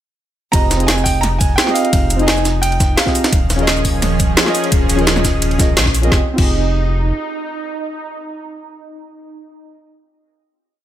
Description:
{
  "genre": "liquid drum and bass",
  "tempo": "172 BPM",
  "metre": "4/4",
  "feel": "straight",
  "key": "F minor",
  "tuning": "A4 = 439 Hz",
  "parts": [
    { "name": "clear concert grand piano", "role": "melody", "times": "0.5-4.0 s", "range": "F5 to Bb5", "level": "-21 LUFS", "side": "right 2 dB", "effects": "tape echo" },
    { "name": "deep mellow chord stab", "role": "accompaniment", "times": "0.5-10.1 s", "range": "C4 to Eb5", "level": "-20 LUFS", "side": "equal", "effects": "chorus, tape echo" },
    { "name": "lush unison pad", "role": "sustained chords", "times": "0.5-9.7 s", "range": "F3 to Ab4", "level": "-24 LUFS", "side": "right 2 dB", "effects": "chorus, phaser, sidechain pumping" },
    { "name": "sub bass with octave", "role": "bass", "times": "0.5-7.1 s", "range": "Eb1 to Bb1", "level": "-18 LUFS", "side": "equal", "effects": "tube saturation" },
    { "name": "electronic kick drum", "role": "drums", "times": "0.5-6.5 s", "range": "none", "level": "-17 LUFS", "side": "equal", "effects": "small room reverb" },
    { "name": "garage drum kit", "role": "drums", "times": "0.5-6.5 s", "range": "cabasa, crash cymbal, hi-hat, snare drum", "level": "-18 LUFS", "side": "equal", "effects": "small room reverb" },
    { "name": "jungle sampler-style drum kit", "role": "drums", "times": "0.5-6.0 s", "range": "hi-hat, ride cymbal, snare drum", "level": "-22 LUFS", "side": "right 1 dB", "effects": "high-pass filter on cymbals, small room reverb, high-pass filter on snare, high-pass filter on hats" }
  ],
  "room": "light reverb, digital ambience",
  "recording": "none",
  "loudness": "-13 LUFS",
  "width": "side -12 dB against mid",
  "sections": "0.5-6.1 drop; 6.1-8.9 final chord",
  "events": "drop 0.5-6.1; band accent 5.8",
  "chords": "0.5 Fm9; 3.3 Eb9sus4; 6.1 Fm9",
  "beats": "| 0.54 0.89 1.23 1.58 | 1.93 2.28 2.63 2.98 | 3.33 3.68 4.03 4.37 | 4.72 5.07 5.42 5.77 | 6.12 6.47 6.82 7.16 | 7.51 7.86 8.21 8.56"
}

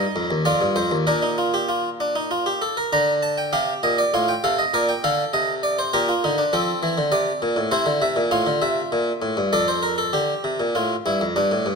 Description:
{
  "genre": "classical, baroque-style 3-part fugue for harpsichord",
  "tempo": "99 BPM",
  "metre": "3/4",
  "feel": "straight",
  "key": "Bb major",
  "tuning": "A4 = 440 Hz",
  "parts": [
    { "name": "harpsichord", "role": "solo", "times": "0.0-11.8 s", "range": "Eb2 to Bb5", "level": "-19 LUFS", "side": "equal", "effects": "none" }
  ],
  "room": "moderate concert hall reverb, RT60 2.3 s",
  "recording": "close, detailed microphones",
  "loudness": "-19 LUFS",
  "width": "side -4 dB against mid",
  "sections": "0.0-2.9 A section; 2.9-10.1 B section; 10.1-11.8 A section",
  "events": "none",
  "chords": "0.5 F5; 1.1 Bb; 2.9 Bb/D; 4.1 F7/A; 4.7 Bb; 6.5 F; 7.7 C7; 8.3 F/A; 9.5 F; 10.1 Bb",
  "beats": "0.45 | 1.07 1.69 2.30 | 2.92 3.53 4.14 | 4.74 5.33 5.93 | 6.53 7.12 7.71 | 8.31 8.91 9.52 | 10.13 10.75 11.36"
}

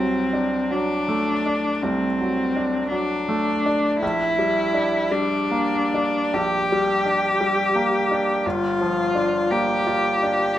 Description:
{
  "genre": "classical, romantic duo for cello and grand piano",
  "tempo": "47-58 BPM (dotted quarters)",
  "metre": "12/8",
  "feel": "rubato",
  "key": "unclear",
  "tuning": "A4 = 440 Hz",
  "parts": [
    { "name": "rich cello", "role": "melody", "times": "0.0-10.6 s", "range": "C4 to G4", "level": "-21 LUFS", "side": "left 1 dB", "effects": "none" },
    { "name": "bright baby grand piano", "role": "accompaniment", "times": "0.0-10.6 s", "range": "G1 to F4", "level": "-23 LUFS", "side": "equal", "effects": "none" }
  ],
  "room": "moderate concert hall reverb, RT60 2.2 s",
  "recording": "close, detailed microphones",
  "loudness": "-19 LUFS",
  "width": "side -12 dB against mid",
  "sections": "0.0-10.6 A section",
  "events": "none",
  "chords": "0.0 D7/C; 4.0 Gm/Bb; 8.4 Gm7",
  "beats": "0.71 1.84 2.92 | 4.02 5.12 6.34 7.40 | 8.45 9.50 10.57"
}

